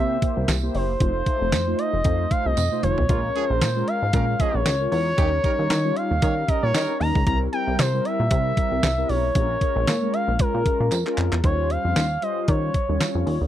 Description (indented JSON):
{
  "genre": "early-eighties boogie funk",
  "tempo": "115 BPM",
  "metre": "4/4",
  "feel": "swing 56% on 16ths",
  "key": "Bb dorian",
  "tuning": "A4 = 441 Hz",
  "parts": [
    { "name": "expressive portamento lead", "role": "melody", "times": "0.0-13.2 s", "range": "Bb4 to Bb5", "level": "-25 LUFS", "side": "equal", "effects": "chorus, tape echo" },
    { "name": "mellow synth brass", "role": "accompaniment", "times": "0.0-13.4 s", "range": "G3 to Db5", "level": "-28 LUFS", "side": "left 1 dB", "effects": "chorus" },
    { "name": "plucky analog bass", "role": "bass", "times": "0.0-13.5 s", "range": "F1 to Eb3", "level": "-24 LUFS", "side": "equal", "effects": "none" },
    { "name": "clean 12-bit digital drum machine", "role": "drums", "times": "0.2-13.4 s", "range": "handclaps, hi-hat, kick drum, snare drum, toms", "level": "-23 LUFS", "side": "equal", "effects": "none" },
    { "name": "tambourine", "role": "percussion", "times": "0.5-13.1 s", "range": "none", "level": "-34 LUFS", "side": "right 24 dB", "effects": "none" },
    { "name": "warm horn section", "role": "second line", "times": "3.1-7.0 s", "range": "Db3 to Db5", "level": "-31 LUFS", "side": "right 7 dB", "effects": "none" }
  ],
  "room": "little or no reverb",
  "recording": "dry, close 1970s-style studio recording",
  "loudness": "-20 LUFS",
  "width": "side -12 dB against mid",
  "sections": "0.0-11.4 A section; 11.4-13.5 B section",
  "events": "drum fill 2.6-3.1, 10.9-11.4",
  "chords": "0.0 C7; 1.0 F7; 3.1 Bbm7; 5.2 Eb7; 7.3 C7; 9.4 Bbm7; 11.4 Eb13"
}